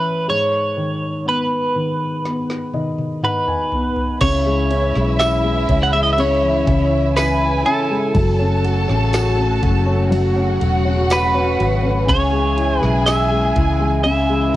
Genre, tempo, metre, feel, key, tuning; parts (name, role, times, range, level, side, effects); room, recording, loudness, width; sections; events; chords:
pop ballad; 61 BPM; 4/4; straight; C# minor; A4 = 440 Hz
twelve-string electric guitar; melody; 0.0-14.6 s; A4 to F#5; -20 LUFS; right 1 dB
dark upright piano; accompaniment; 0.0-14.6 s; G#2 to G#5; -21 LUFS; left 2 dB; cassette tape
smooth R&B drum kit; drums; 2.3-14.3 s; crash cymbal, kick drum, ride cymbal, snare drum, toms; -24 LUFS; equal; cassette tape
warm symphonic violin section; second line; 4.2-14.6 s; E4 to A5; -24 LUFS; equal; cassette tape, tape echo
lush unison pad; sustained chords; 4.2-14.6 s; C#3 to F#4; -26 LUFS; equal; chorus, phaser, cassette tape
vintage muted fingered electric bass; bass; 4.2-14.5 s; E1 to C#2; -19 LUFS; equal
tambourine; percussion; 5.2-13.3 s; -35 LUFS; left 6 dB
little or no reverb; home recording on cassette; -15 LUFS; side -15 dB against mid
0.0-4.2 A section; 4.2-14.6 B section
upright piano fill 2.2-4.2; drum fill 2.2-4.2
0.3 G#m; 4.2 C#m; 8.2 F#m; 12.1 C#m